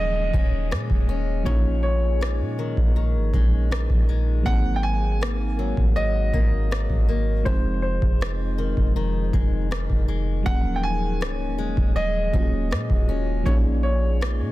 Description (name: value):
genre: contemporary R&B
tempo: 80 BPM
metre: 4/4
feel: straight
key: Eb dorian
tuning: A4 = 440 Hz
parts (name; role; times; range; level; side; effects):
- warm grand piano; melody; 0.0-14.5 s; C5 to Ab5; -30 LUFS; right 1 dB; tape echo
- mellow FM electric piano; accompaniment; 0.0-14.5 s; F3 to Ab4; -31 LUFS; right 1 dB; chorus
- fingerpicked steel-string acoustic guitar; arpeggios; 0.0-14.5 s; F2 to Db4; -31 LUFS; left 7 dB; tape echo
- soft 808-style bass; bass; 0.0-14.5 s; Db1 to Bb2; -24 LUFS; equal; none
- downlifter; sound effects; 0.0-4.5 s; none; -43 LUFS; equal; none
- booming analog drum machine; drums; 0.3-14.4 s; kick drum, rim click; -22 LUFS; equal; soft clipping on snare
room: little or no reverb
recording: dense, heavily limited modern master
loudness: -20 LUFS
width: side -17 dB against mid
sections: 0.0-14.5 A section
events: none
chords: 0.0 Ebm11; 1.5 Bbm7; 4.5 Ab9; 7.5 Fm7; 10.5 Ebm11; 13.5 Bbm7